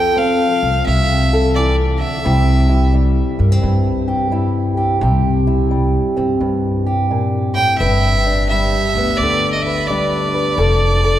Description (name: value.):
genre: acoustic country blues, solo or duo.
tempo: 87 BPM.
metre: 4/4.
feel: swing 65% on 8ths.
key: C major.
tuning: A4 = 440 Hz.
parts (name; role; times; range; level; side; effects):
rich fiddle; melody; 0.0-2.9, 7.5-11.2 s; D5 to G5; -18 LUFS; right 1 dB; none.
fingerpicked old ladder-braced acoustic guitar; accompaniment; 0.0-11.2 s; G2 to B4; -18 LUFS; equal; none.
upright bass; bass; 0.0-11.2 s; F1 to G2; -17 LUFS; equal; none.
room: wet cathedral reverb, RT60 4.4 s.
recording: recorded in a church or concert hall.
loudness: -14 LUFS.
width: side -12 dB against mid.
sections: 0.0-11.2 A section.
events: none.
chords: 0.0 F; 2.3 C; 7.8 G; 10.6 F.